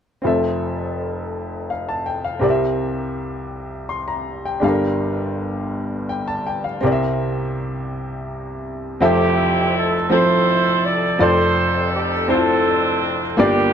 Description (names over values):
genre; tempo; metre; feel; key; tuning
gospel; 55 BPM (dotted quarters); 6/8; straight; F major; A4 = 441 Hz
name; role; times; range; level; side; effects
clear baby grand piano; accompaniment; 0.2-13.7 s; F1 to C6; -19 LUFS; equal; none
mellow horn section; melody; 9.0-13.7 s; Bb3 to D5; -18 LUFS; right 2 dB; none
room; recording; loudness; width
moderate studio reverb, RT60 0.6 s; dark, warm production; -17 LUFS; side -8 dB against mid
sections
0.2-9.0 A section; 9.0-13.7 B section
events
none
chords
0.2 Fmaj7; 2.4 C7; 4.6 Gm7; 6.8 C7; 9.0 Fmaj7; 11.2 Dm7/F